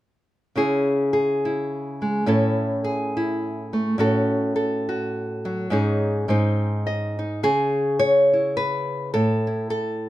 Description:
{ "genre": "folk, solo fingerstyle acoustic guitar", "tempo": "105 BPM", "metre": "3/4", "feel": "swing 56% on 8ths", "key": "C# minor", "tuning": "A4 = 442 Hz", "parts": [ { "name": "nylon-string guitar", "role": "solo", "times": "0.6-10.1 s", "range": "G#2 to D#5", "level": "-20 LUFS", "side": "equal", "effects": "none" } ], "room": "light reverb", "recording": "close, detailed microphones", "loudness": "-20 LUFS", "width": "side -15 dB against mid", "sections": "0.6-7.4 A section; 7.4-10.1 B section", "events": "none", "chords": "0.6 C#m; 2.3 A; 4.0 F#m/A; 5.7 G#sus4; 6.3 G#; 7.4 C#m; 9.1 A5" }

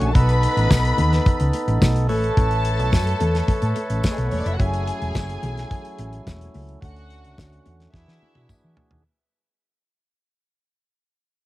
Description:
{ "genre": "disco", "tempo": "108 BPM", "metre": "4/4", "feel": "straight", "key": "F# minor", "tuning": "A4 = 440 Hz", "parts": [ { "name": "warm studio violin section", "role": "second line", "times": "0.0-8.8 s", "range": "G#3 to B5", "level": "-27 LUFS", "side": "left 1 dB", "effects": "cassette tape, tape echo" }, { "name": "percussive tonewheel organ", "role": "sustained chords", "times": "0.0-9.0 s", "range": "D3 to C#5", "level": "-27 LUFS", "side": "right 1 dB", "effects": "overdrive, wide subtle chorus, cassette tape" }, { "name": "hollow-body short-scale fingered electric bass", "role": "bass", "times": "0.0-9.0 s", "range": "E1 to E3", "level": "-21 LUFS", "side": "equal", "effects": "none" }, { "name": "damped 70s drum kit", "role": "drums", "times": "0.0-9.0 s", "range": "hi-hat, kick drum, snare drum, toms", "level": "-21 LUFS", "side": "equal", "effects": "cassette tape" }, { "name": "congas", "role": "percussion", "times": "0.7-8.9 s", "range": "none", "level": "-31 LUFS", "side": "left 3 dB", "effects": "none" }, { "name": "tambourine", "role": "percussion", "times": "0.7-8.6 s", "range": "none", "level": "-38 LUFS", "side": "left 5 dB", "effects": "none" } ], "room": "small room ambience", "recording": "home recording on cassette", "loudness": "-18 LUFS", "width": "side -17 dB against mid", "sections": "0.0-9.1 A section", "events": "fade-out 0.0-9.1; drum fill 7.9-9.1", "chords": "0.1 B7; 2.1 Aadd9; 4.6 F#m7; 6.8 Dmaj7; 7.9 E9" }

